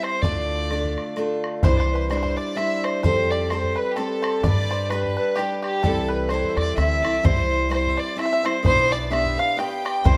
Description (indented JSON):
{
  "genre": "celtic folk, Celtic waltz",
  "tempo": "128 BPM",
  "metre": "3/4",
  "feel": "swing 57% on 8ths",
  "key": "unclear",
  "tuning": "A4 = 441 Hz",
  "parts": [
    { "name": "dark fiddle", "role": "melody", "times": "0.0-10.2 s", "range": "G4 to G5", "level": "-26 LUFS", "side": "equal", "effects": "none" },
    { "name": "bluegrass banjo", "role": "second line", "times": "0.0-10.2 s", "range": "G4 to G5", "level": "-34 LUFS", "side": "equal", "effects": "none" },
    { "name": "clear fiddle", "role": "second line", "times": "0.0-10.2 s", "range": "G4 to G5", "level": "-38 LUFS", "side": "equal", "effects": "none" },
    { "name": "picked steel-string acoustic guitar", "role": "accompaniment", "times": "0.0-10.2 s", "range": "C3 to C5", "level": "-29 LUFS", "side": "equal", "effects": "none" },
    { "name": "bodhran", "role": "percussion", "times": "0.0-10.2 s", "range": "none", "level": "-27 LUFS", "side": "equal", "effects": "none" },
    { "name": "upright bass", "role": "bass", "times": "0.2-10.2 s", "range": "B1 to G2", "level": "-28 LUFS", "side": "equal", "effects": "none" }
  ],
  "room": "moderate plate reverb, RT60 2.5 s",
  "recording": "none",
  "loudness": "-22 LUFS",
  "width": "mono",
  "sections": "0.0-1.6 A section; 1.6-10.2 A section",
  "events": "none",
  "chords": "0.2 Dm; 1.6 Cadd9; 3.0 Fadd9; 4.4 G; 5.8 C6; 7.2 C; 8.6 G/B"
}